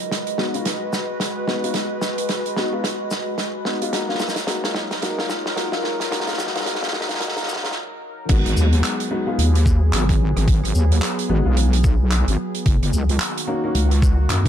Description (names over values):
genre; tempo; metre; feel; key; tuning
glitch hop; 110 BPM; 4/4; swing 59% on 16ths; G# dorian; A4 = 440 Hz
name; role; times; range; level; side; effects
warbly tape-like pad; sustained chords; 0.0-14.5 s; D#3 to B4; -29 LUFS; equal; chorus, built-in reverb, sidechain pumping
loose indie drum kit; drums; 0.0-14.5 s; crash cymbal, handclaps, hi-hat, rim click, shaker, snare drum; -25 LUFS; right 1 dB; none
warbly tape-like pad; texture; 0.0-7.7 s; F#3 to D#5; -29 LUFS; right 1 dB; chorus, built-in reverb, sidechain pumping
dark baby grand piano; stabs; 0.4-13.9 s; G#3 to F#4; -26 LUFS; left 2 dB; sidechain pumping, ping-pong delay
wobble bass; bass; 8.3-14.5 s; F#1 to F#2; -17 LUFS; equal; chorus, tube saturation
electronic kick drum; drums; 8.3-14.5 s; none; -18 LUFS; equal; overdrive
room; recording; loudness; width
studio reverb; dark, warm production, high-pass filter; -18 LUFS; side -10 dB against mid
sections
0.0-8.3 A section; 8.3-14.5 B section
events
build-up 0.0-8.3; drum fill 0.0-7.7; filter sweep on grand piano 0.0-8.3; break 7.7-8.3; drop 8.3-14.5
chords
0.0 G#m7; 3.9 F#6; 8.3 G#m7; 12.7 F#6